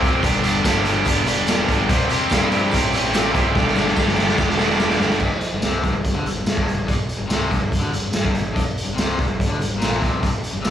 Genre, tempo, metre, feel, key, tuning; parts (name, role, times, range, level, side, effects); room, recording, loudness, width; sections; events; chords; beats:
classic rock; 144 BPM; 4/4; straight; G major; A4 = 440 Hz
cranked stack guitar; riff; 0.0-10.7 s; G2 to C4; -24 LUFS; left 6 dB; overdrive, slapback echo
tight distorted guitar; riff; 0.0-5.2 s; G2 to G4; -22 LUFS; right 11 dB; distortion, slapback echo
growling picked electric bass; bass; 0.0-10.7 s; E1 to G2; -26 LUFS; equal; overdrive
raw garage drum kit; drums; 0.0-10.7 s; crash cymbal, hi-hat, kick drum, snare drum, tambourine; -20 LUFS; equal
tambourine; percussion; 0.2-5.1 s; -39 LUFS; right 4 dB
light reverb; live gig heard through the venue's PA, club reverb; -17 LUFS; side -10 dB against mid
0.0-5.2 A section; 5.2-10.7 B section
drum fill 3.5-5.2
0.2 G; 1.9 C; 3.5 G; 5.2 G5
| 0.23 0.64 1.06 1.47 | 1.89 2.30 2.72 3.13 | 3.55 3.96 4.38 4.79 | 5.21 5.63 6.05 6.46 | 6.88 7.30 7.72 8.14 | 8.56 8.97 9.39 9.81 | 10.23 10.65